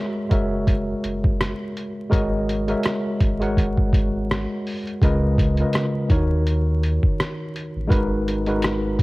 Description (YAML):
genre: lo-fi hip hop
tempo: 83 BPM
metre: 4/4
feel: swing 58% on 16ths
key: unclear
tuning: A4 = 440 Hz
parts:
  - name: tine electric piano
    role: accompaniment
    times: 0.0-9.0 s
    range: C#3 to F#5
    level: -23 LUFS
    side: equal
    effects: overdrive, fast stereo tremolo, low-pass filter, cassette tape
  - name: warm sub bass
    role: bass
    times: 0.3-9.0 s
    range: F#1 to D#2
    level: -25 LUFS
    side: equal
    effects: transformer saturation
  - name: lo-fi sampler-style drum kit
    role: drums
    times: 0.3-9.0 s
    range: hi-hat, kick drum, rim click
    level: -21 LUFS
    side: equal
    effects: cassette tape
room: little or no reverb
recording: home recording on cassette, vinyl crackle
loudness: -19 LUFS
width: side -21 dB against mid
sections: 0.0-5.0 A section; 5.0-9.0 B section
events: none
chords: 0.0 F#7; 5.0 C#13; 6.1 D#m7; 7.9 G#m9